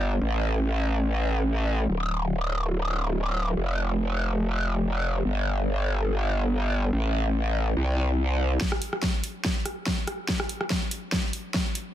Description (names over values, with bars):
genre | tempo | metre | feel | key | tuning
heavy wobble dubstep | 143 BPM | 4/4 | swing 54% on 16ths, half-time | unclear | A4 = 438 Hz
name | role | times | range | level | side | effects
growl bass | bass | 0.0-8.6 s | D1 to C2 | -23 LUFS | equal | chorus, overdrive
big-room dance drum kit | drums | 8.6-11.8 s | hi-hat, rim click, snare drum | -28 LUFS | equal | none
electronic kick drum | drums | 8.6-11.6 s | none | -30 LUFS | equal | none
room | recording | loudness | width
little or no reverb | dense, heavily limited modern master | -24 LUFS | side -12 dB against mid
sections
0.0-8.6 A section; 8.6-11.9 B section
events
build-up 8.6-11.9; drum fill 8.6-11.9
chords
none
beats
| 0.21 0.64 1.05 1.47 | 1.89 2.31 2.73 3.15 | 3.57 3.99 4.41 4.83 | 5.25 5.67 6.09 6.51 | 6.93 7.35 7.77 8.19 | 8.61 9.03 9.45 9.87 | 10.29 10.71 11.12 11.54